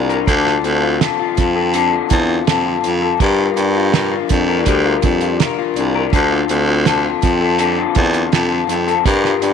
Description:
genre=indie pop, bedroom pop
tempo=82 BPM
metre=4/4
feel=straight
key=unclear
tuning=A4 = 440 Hz
part: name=electric guitar through a small old amp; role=accompaniment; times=0.0-9.5 s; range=D3 to Bb4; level=-17 LUFS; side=left 12 dB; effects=analog chorus, vibrato effect
part: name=raspy baritone saxophone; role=bass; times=0.0-9.5 s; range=C2 to G2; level=-17 LUFS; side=right 2 dB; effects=none
part: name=cloth-damped thuddy drum kit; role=drums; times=0.1-9.5 s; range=hi-hat, kick drum, snare drum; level=-19 LUFS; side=right 4 dB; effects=none
room=light reverb, studio reverb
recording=1960s-style stereo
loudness=-13 LUFS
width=side -7 dB against mid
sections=0.0-9.5 A section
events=none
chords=0.3 Dm7; 3.2 Gm7; 6.1 Dm7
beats=| 0.28 1.01 1.74 2.47 | 3.20 3.93 4.67 5.40 | 6.13 6.86 7.59 8.32 | 9.06

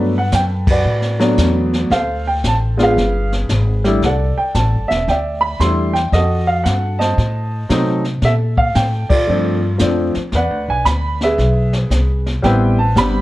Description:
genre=jazz piano trio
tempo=114 BPM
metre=4/4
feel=swing 66% on 8ths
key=G major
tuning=A4 = 440 Hz
part: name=warm upright piano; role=melody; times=0.0-13.2 s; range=F3 to C6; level=-17 LUFS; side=equal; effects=plate reverb
part: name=upright bass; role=bass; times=0.0-13.2 s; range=E1 to C3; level=-17 LUFS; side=equal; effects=none
part: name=jazz brush drum kit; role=drums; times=0.3-13.2 s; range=brushed snare drum, crash cymbal, hi-hat, kick drum, snare drum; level=-21 LUFS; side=left 1 dB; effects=none
room=light reverb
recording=worn, warbling old tape, cassette tape, warbly pitch drift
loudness=-14 LUFS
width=side -16 dB against mid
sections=0.0-13.2 A section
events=band accent 0.6, 9.0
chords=0.0 Gmaj9; 1.9 Dm7; 3.0 G; 4.0 C69; 6.1 F7b9; 8.2 Bbmaj7; 10.3 E7b13; 12.4 Am9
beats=0.33 0.86 1.38 | 1.91 2.44 2.97 3.50 | 4.02 4.55 5.08 5.60 | 6.13 6.66 7.18 7.71 | 8.23 8.76 9.29 9.81 | 10.34 10.86 11.39 11.91 | 12.44 12.96

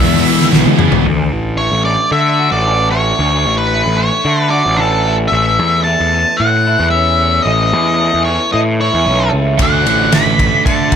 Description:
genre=quiet-loud alternative rock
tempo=112 BPM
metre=4/4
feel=straight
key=unclear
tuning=A4 = 440 Hz
part: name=octave-fuzz lead guitar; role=melody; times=0.0-11.0 s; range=A4 to B5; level=-14 LUFS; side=left 1 dB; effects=distortion
part: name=ensemble organ-string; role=sustained chords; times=0.0-1.0 s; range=E4 to F#5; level=-31 LUFS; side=right 1 dB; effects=none
part: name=cranked stack guitar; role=riff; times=0.0-1.0, 9.6-11.0 s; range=D3 to E4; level=-17 LUFS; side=right 14 dB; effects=overdrive
part: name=overdriven semi-hollow guitar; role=riff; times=0.0-1.0 s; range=E3 to E4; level=-17 LUFS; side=left 2 dB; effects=none
part: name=thick fuzz guitar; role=riff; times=0.0-1.0 s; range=E3 to E4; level=-17 LUFS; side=left 16 dB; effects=distortion
part: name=fuzz picked electric bass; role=bass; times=0.0-11.0 s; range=A1 to D3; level=-16 LUFS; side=equal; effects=overdrive
part: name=loose indie drum kit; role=drums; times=0.1-1.0, 9.6-11.0 s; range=hi-hat, kick drum, ride cymbal, snare drum, toms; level=-14 LUFS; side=equal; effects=none
part: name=electric guitar through a small old amp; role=arpeggios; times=1.1-11.0 s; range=A2 to F#4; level=-20 LUFS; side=right 1 dB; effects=none
room=small room ambience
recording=none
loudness=-10 LUFS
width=side -8 dB against mid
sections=0.0-1.1 A section; 1.1-11.0 B section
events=drum fill 0.5-1.1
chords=0.0 Eadd9; 1.1 D; 5.3 A; 9.6 D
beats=0.52 | 1.05 1.59 2.12 2.65 | 3.19 3.72 4.26 4.79 | 5.33 5.86 6.39 6.93 | 7.46 7.99 8.53 9.06 | 9.59 10.12 10.66

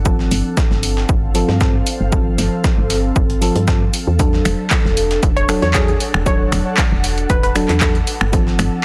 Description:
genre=deep house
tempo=116 BPM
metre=4/4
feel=straight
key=unclear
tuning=A4 = 440 Hz
part: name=mellow FM electric piano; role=stabs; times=0.0-8.8 s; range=F3 to A4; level=-24 LUFS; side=equal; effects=chorus, sidechain pumping, low-pass filter, analog delay
part: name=woody FM bass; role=bass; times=0.0-8.7 s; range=E1 to G2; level=-22 LUFS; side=equal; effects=sidechain pumping
part: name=ethereal airy pad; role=texture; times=0.0-8.8 s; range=C4 to F#5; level=-29 LUFS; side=equal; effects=ensemble chorus, built-in reverb, phaser, sidechain pumping
part: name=breakbeat sampler-style drum kit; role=drums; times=0.1-8.7 s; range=hi-hat, shaker, snare drum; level=-32 LUFS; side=equal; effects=overdrive, sidechain pumping on perc, high-pass filter on perc, high-pass filter on snare, sidechain pumping on hats, high-pass filter on hats, high-pass filter on room
part: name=electronic kick drum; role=drums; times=0.1-8.4 s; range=none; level=-20 LUFS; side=equal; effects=none
part: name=punchy analog drum machine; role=drums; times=0.3-8.7 s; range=finger snaps, handclaps, hi-hat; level=-24 LUFS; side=equal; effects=none
part: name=glassy wavetable pluck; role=melody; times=5.4-7.5 s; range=G#4 to C#5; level=-25 LUFS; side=equal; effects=chorus, analog delay
room=light reverb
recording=dense, heavily limited modern master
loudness=-16 LUFS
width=mono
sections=0.0-8.8 A section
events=none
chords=0.0 G9sus4; 4.2 E9sus4; 8.1 G9sus4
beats=| 0.06 0.57 1.09 1.61 | 2.12 2.64 3.16 3.68 | 4.19 4.71 5.23 5.75 | 6.26 6.78 7.30 7.82 | 8.33

